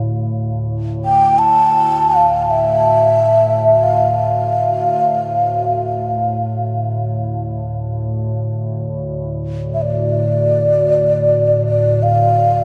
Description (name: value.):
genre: world meditative, free-time meditation music.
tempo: free time.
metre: none.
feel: none.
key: D minor.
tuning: A4 = 441 Hz.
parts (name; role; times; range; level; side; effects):
glassy FM pad; drone; 0.0-12.6 s; D2 to A2; -22 LUFS; equal; ensemble chorus, built-in reverb.
breathy mellow low xiao; melody; 1.0-12.6 s; D5 to A5; -16 LUFS; equal; diffuse ambient delay.
room: wet huge ambient reverb, RT60 7.1 s.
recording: dreamy mix soaked in reverb.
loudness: -16 LUFS.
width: mono.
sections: 0.0-12.6 A section.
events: none.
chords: none.